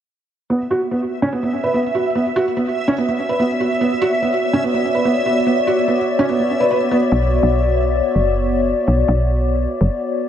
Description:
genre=IDM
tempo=145 BPM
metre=4/4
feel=straight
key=B minor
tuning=A4 = 440 Hz
part: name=hollow soft pad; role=sustained chords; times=0.5-10.3 s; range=B3 to D5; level=-19 LUFS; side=left 2 dB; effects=chorus
part: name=felt-muted upright piano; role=arpeggios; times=0.5-7.0 s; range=B3 to B4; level=-19 LUFS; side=right 2 dB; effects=vintage 12-bit sampler grit, low-pass filter, digital delay
part: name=backwards swelling texture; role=texture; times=1.1-7.1 s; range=E5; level=-24 LUFS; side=right 2 dB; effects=built-in reverb
part: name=woody FM bass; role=bass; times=7.1-9.9 s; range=F#1 to B1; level=-17 LUFS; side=equal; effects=none
room=moderate huge ambient reverb, RT60 6.3 s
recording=none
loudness=-15 LUFS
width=side -10 dB against mid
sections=0.5-7.1 A section; 7.1-10.3 B section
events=filter sweep on analog synth pad 0.5-7.1; filter sweep on felt piano 0.5-7.1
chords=0.5 Bm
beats=| 0.50 0.91 1.33 1.74 | 2.15 2.57 2.98 3.40 | 3.81 4.22 4.64 5.05 | 5.46 5.88 6.29 6.71 | 7.12 7.53 7.95 8.36 | 8.77 9.19 9.60 10.02

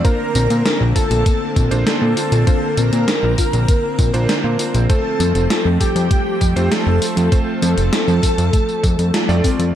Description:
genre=synthwave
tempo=99 BPM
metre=4/4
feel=straight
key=unclear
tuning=A4 = 441 Hz
part: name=wide unison lead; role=melody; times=0.0-9.6 s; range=G4 to Bb4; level=-22 LUFS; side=equal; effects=cassette tape, tape echo
part: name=string machine, violins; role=second line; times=0.0-9.6 s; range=G5 to Bb5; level=-31 LUFS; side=equal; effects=ensemble chorus, digital delay
part: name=lush unison pad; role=sustained chords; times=0.0-9.7 s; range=D3 to C4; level=-25 LUFS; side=right 1 dB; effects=chorus
part: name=soft round pluck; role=arpeggios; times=0.0-9.7 s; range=A3 to A4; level=-27 LUFS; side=left 3 dB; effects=analog chorus, digital delay
part: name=warm electric grand piano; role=stabs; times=0.0-9.7 s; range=A3 to D5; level=-26 LUFS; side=right 4 dB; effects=none
part: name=fat analog bass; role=bass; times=0.0-9.7 s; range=F1 to Bb2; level=-16 LUFS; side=equal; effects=none
part: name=electronic kick drum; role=drums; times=0.0-9.6 s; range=none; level=-16 LUFS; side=equal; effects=studio ambience
part: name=gated 80s digital drum machine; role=drums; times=0.0-9.7 s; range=hi-hat, snare drum, tambourine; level=-23 LUFS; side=equal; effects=gated reverb, gated reverb snare, studio ambience
room=light reverb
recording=dark, warm production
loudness=-14 LUFS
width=side -10 dB against mid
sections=0.0-9.7 A section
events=band accent 9.1-9.4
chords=0.0 Bbadd9; 4.9 F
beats=| 0.05 0.65 1.26 1.87 | 2.47 3.08 3.68 4.29 | 4.90 5.50 6.11 6.71 | 7.32 7.93 8.53 9.14

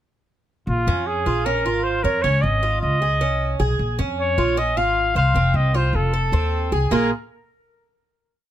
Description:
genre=latin, Cuban son and guajira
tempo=154 BPM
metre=4/4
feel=straight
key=Bb minor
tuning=A4 = 441 Hz
part: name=breathy trumpet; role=melody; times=0.7-7.1 s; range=F4 to F5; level=-22 LUFS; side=left 1 dB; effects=plate reverb
part: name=upright bass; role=bass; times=0.7-7.1 s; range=F1 to F2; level=-22 LUFS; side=left 1 dB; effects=none
part: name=Cuban tres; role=arpeggios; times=0.9-7.1 s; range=Bb3 to Db5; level=-24 LUFS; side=right 3 dB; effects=none
room=light reverb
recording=close, detailed microphones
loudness=-18 LUFS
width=side -12 dB against mid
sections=0.7-6.9 verse; 6.9-8.5 final chord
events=none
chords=0.7 Bbm7; 2.2 Dbadd9; 3.8 Bbm7; 5.4 F; 6.9 Bb5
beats=| 0.68 1.07 1.46 1.85 | 2.24 2.63 3.02 3.41 | 3.80 4.19 4.58 4.96 | 5.35 5.74 6.13 6.52 | 6.91

